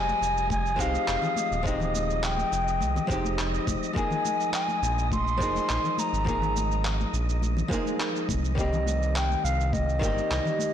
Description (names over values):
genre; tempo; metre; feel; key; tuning
sunset chillout; 104 BPM; 4/4; straight; F minor; A4 = 439 Hz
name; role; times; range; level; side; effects
bright baroque flute; melody; 0.0-10.7 s; Eb5 to C6; -28 LUFS; left 2 dB; tape echo
archtop guitar, miked and amplified; accompaniment; 0.0-10.7 s; Eb3 to Ab4; -32 LUFS; moving between left 2 dB and right 4 dB; auto-pan, ping-pong delay
round analog bass; bass; 0.0-10.4 s; Eb1 to C2; -28 LUFS; right 1 dB; tube saturation
wind-like tuned noise texture; texture; 0.0-10.7 s; Eb5 to Eb6; -37 LUFS; right 2 dB; built-in reverb
electronic cabasa and handclaps; drums; 0.1-10.7 s; none; -35 LUFS; right 2 dB; none
congas; percussion; 0.1-10.7 s; none; -36 LUFS; left 4 dB; none
electronic kick drum; drums; 0.5-10.1 s; none; -32 LUFS; right 1 dB; none
room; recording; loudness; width
moderate lush hall reverb, RT60 1.8 s, digital ambience; blown-out, overdriven recording, overdrive; -24 LUFS; side -9 dB against mid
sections
0.0-10.7 A section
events
none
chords
0.0 Fm9; 4.0 Bb7sus4; 8.6 Cm7